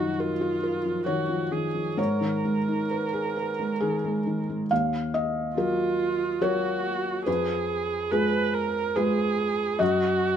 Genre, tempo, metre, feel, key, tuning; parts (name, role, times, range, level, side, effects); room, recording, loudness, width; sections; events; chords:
neoclassical piano and strings; 65-72 BPM; 3/4; rubato; Eb minor; A4 = 444 Hz
felt-muted upright piano; accompaniment; 0.0-10.4 s; Eb2 to F5; -25 LUFS; left 1 dB
muted viola; accompaniment; 0.0-10.4 s; F4 to Cb5; -28 LUFS; right 5 dB
light reverb; minimal, uncompressed stereo recording; -24 LUFS; side -9 dB against mid
0.0-4.7 A section; 4.7-10.4 B section
0.0 Ebmadd9/Gb; 2.0 Abmadd9; 4.7 Ebmadd9; 7.3 Fdim; 9.8 Ebm/Gb